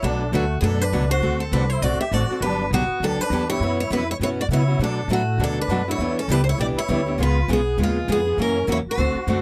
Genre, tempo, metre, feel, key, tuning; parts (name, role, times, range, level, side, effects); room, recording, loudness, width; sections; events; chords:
acoustic string swing (jazz manouche); 201 BPM; 4/4; swing 58% on 8ths; B minor; A4 = 440 Hz
picked steel-string acoustic guitar; melody; 0.0-9.4 s; E#4 to E5; -28 LUFS; equal
musette accordion; second line; 0.0-9.4 s; G#3 to G4; -33 LUFS; equal
picked steel-string acoustic guitar; accompaniment; 0.0-9.4 s; B2 to A4; -28 LUFS; equal
picked steel-string acoustic guitar; accompaniment; 0.0-9.4 s; B2 to B4; -34 LUFS; equal
upright bass; bass; 0.0-9.4 s; G1 to C#3; -26 LUFS; equal
little or no reverb; -22 LUFS; mono
0.0-9.4 A section
0.0 Bm7; 1.2 D7; 2.4 Gmaj7; 3.6 F#7sus4; 4.8 Bm7; 6.0 Em7; 7.2 C#7; 8.4 F#7